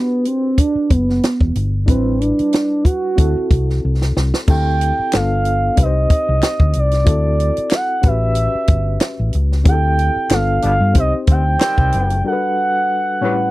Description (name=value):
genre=lush 1970s-style soul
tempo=93 BPM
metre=4/4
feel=swing 54% on 16ths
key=G major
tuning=A4 = 441 Hz
part: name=gliding portamento lead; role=melody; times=0.0-13.5 s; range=B3 to G5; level=-18 LUFS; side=right 2 dB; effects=chorus
part: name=barky reed electric piano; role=accompaniment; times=0.0-13.5 s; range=A2 to C5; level=-24 LUFS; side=left 4 dB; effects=overdrive, fast tremolo
part: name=compact cocktail drum kit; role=drums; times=0.3-12.2 s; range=crash cymbal, hi-hat, kick drum, snare drum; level=-15 LUFS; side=equal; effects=none
part: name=hollow-body short-scale fingered electric bass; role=bass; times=0.8-12.2 s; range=E1 to G2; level=-17 LUFS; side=equal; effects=none
part: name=group handclap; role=percussion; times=5.1-11.8 s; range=none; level=-29 LUFS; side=left 5 dB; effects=none
part: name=clear trombone section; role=stabs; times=10.6-13.3 s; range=G2 to D4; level=-25 LUFS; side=left 4 dB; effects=none
room=little or no reverb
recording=dry, close 1970s-style studio recording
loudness=-14 LUFS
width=side -18 dB against mid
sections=0.0-4.5 A section; 4.5-13.5 B section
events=drum fill 3.8-4.5; break 12.2-13.5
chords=0.0 Em7 (rootless); 1.9 A7sus4; 3.2 D9 (rootless); 4.5 D9sus4; 5.1 G7; 5.8 Cm; 7.1 D7; 8.0 A13; 9.7 D9sus4; 10.3 G7; 11.0 Cm; 12.2 Gmaj7